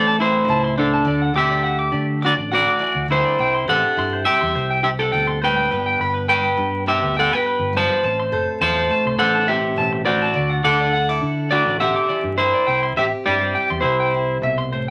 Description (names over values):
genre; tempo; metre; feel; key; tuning
highlife; 103 BPM; 4/4; straight; unclear; A4 = 436 Hz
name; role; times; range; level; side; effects
electric guitar at the edge of break-up; melody; 0.0-14.4 s; D4 to A5; -21 LUFS; equal; none
picked plugged-in steel-string acoustic guitar; accompaniment; 0.0-14.9 s; G2 to C5; -30 LUFS; equal; none
clean electric guitar; arpeggios; 0.0-14.9 s; B4 to D6; -26 LUFS; equal; none
fingered electric bass; bass; 0.0-14.9 s; F#1 to D3; -29 LUFS; equal; none
room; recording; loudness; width
wet studio reverb, RT60 0.5 s; vinyl crackle; -19 LUFS; mono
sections
0.0-14.9 A section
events
none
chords
0.0 Am; 1.1 Dadd9; 3.4 C; 5.7 G; 8.0 Am; 10.4 Dadd9; 12.7 C